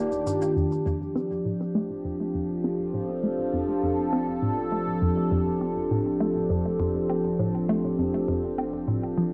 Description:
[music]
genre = ambient, sequencer-driven space music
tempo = 101 BPM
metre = 4/4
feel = straight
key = F mixolydian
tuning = A4 = 440 Hz
[part]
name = sweeping resonant pad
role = sustained chords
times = 0.0-9.3 s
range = Eb3 to A4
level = -28 LUFS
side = equal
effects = chorus, phaser, cassette tape
[part]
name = hollow square pluck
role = riff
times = 0.0-9.3 s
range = F2 to C4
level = -32 LUFS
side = equal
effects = chorus, phaser, cassette tape, delay
[part]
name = warm sub bass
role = bass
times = 0.0-9.3 s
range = Eb1 to F1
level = -52 LUFS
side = equal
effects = none
[part]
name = cabasa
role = percussion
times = 0.1-0.5 s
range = none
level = -51 LUFS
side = equal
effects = delay
[sound]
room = wet spring reverb, RT60 1.0 s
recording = home recording on cassette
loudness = -27 LUFS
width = mono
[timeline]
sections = 0.6-9.3 A section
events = filter sweep on synth arpeggio sound 0.6-9.3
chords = 0.0 Ebmaj7; 0.6 F6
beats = | 0.56 1.16 1.75 2.35 | 2.94 3.53 4.13 4.72 | 5.32 5.91 6.50 7.10 | 7.69 8.29 8.88

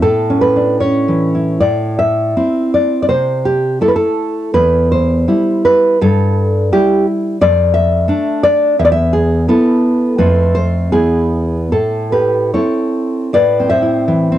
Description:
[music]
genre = romantic piece for solo classical guitar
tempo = 72-90 BPM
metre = 2/4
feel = rubato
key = A minor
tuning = A4 = 441 Hz
[part]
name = nylon-string guitar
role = solo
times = 0.0-14.4 s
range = E2 to E5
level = -11 LUFS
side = equal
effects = cassette tape
[sound]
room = light reverb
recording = home recording on cassette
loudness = -11 LUFS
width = side -12 dB against mid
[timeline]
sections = 0.0-1.6 A section; 1.6-13.3 B section; 13.3-14.4 B section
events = none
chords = 0.0 A; 1.6 Am; 3.1 Am/C; 4.5 Em; 6.0 Em/G; 7.4 Dm/F; 8.8 E5; 10.2 F; 10.9 E; 11.7 Am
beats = | 0.02 0.81 | 1.60 2.36 | 3.09 3.83 | 4.55 5.28 | 6.00 6.71 | 7.40 8.08 | 8.78 9.48 | 10.18 10.93 | 11.72 12.54 | 13.34 14.07

